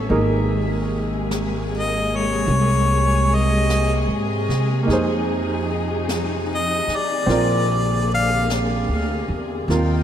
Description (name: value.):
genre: jazz ballad.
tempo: 50 BPM.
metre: 4/4.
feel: swing 67% on 8ths.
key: unclear.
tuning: A4 = 440 Hz.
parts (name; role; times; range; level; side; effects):
clear baby grand piano; accompaniment; 0.0-10.0 s; C3 to D5; -25 LUFS; right 3 dB; none.
warm studio string section; sustained chords; 0.0-10.0 s; C3 to G5; -24 LUFS; equal; none.
upright bass; bass; 0.0-10.0 s; Ab1 to C3; -22 LUFS; equal; none.
jazz brush drum kit; drums; 0.1-10.0 s; brushed snare drum, hi-hat, snare drum; -34 LUFS; equal; none.
clear harmonica; melody; 1.8-8.5 s; Db5 to F5; -24 LUFS; left 2 dB; diffuse ambient delay.
room: wet lush hall reverb, RT60 2.9 s.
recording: dreamy mix soaked in reverb.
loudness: -18 LUFS.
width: side -10 dB against mid.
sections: 0.0-10.0 A section.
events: harmonica solo 0.0-10.0.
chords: 0.1 Abadd9; 4.9 Fm7; 7.3 Bb9.